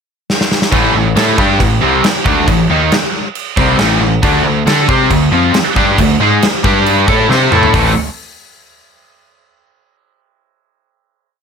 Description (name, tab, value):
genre	hard rock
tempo	137 BPM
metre	4/4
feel	straight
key	A minor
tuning	A4 = 440 Hz
part	gated 80s drum kit	drums	0.3-7.8 s	crash cymbal, hi-hat, kick drum, snare drum, toms	-15 LUFS	equal	none
part	distorted electric guitar	riff	0.7-7.9 s	A2 to D5	-16 LUFS	left 1 dB	overdrive
part	overdriven semi-hollow guitar	riff	0.7-7.9 s	A2 to D5	-17 LUFS	left 11 dB	none
part	scooped high-gain guitar	riff	0.7-7.9 s	A2 to D5	-15 LUFS	right 11 dB	distortion
part	growling picked electric bass	bass	0.7-7.9 s	A1 to D3	-17 LUFS	equal	overdrive
room	light reverb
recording	none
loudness	-9 LUFS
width	side -6 dB against mid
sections	0.0-0.7 pickup bar; 0.7-7.7 riff; 7.7-9.5 final chord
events	drum fill 0.3-0.7, 7.3-7.7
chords	0.0 N.C.; 0.7 Am; 4.2 D5; 6.6 G5; 7.1 Am7; 7.7 A5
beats	0.29 | 0.72 1.16 1.60 2.03 | 2.47 2.91 3.35 3.78 | 4.22 4.66 5.10 5.54 | 5.98 6.42 6.86 7.30 | 7.74